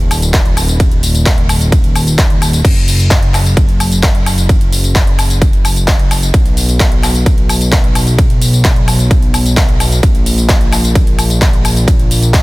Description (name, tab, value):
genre	EDM, festival progressive house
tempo	130 BPM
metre	4/4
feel	straight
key	F# major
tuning	A4 = 436 Hz
part	fat analog bass	bass	0.0-12.4 s	D#1 to B1	-13 LUFS	equal	sidechain pumping
part	big-room dance drum kit	drums	0.1-12.4 s	crash cymbal, handclaps, hi-hat, ride cymbal, tambourine, woodblock	-16 LUFS	left 1 dB	none
part	electronic kick drum	drums	0.3-12.4 s	none	-11 LUFS	equal	none
room	little or no reverb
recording	dense, heavily limited modern master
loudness	-9 LUFS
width	side -20 dB against mid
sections	0.0-12.4 A section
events	none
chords	none